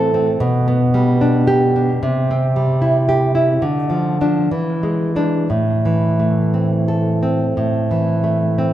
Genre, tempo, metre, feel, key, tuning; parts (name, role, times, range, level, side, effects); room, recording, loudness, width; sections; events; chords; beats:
romantic piece for solo classical guitar; 58-76 BPM; 4/4; rubato; A minor; A4 = 440 Hz
nylon-string guitar; solo; 0.0-8.7 s; A2 to A4; -14 LUFS; equal
moderate concert hall reverb, RT60 2.3 s; lossy compression artefacts; -14 LUFS; side -12 dB against mid
0.0-8.7 A section
0.4 G/B; 2.0 C; 3.6 Dm; 4.5 E7; 5.5 Am
0.41 1.20 | 2.02 2.83 3.63 4.52 | 5.51 6.55 7.57 8.57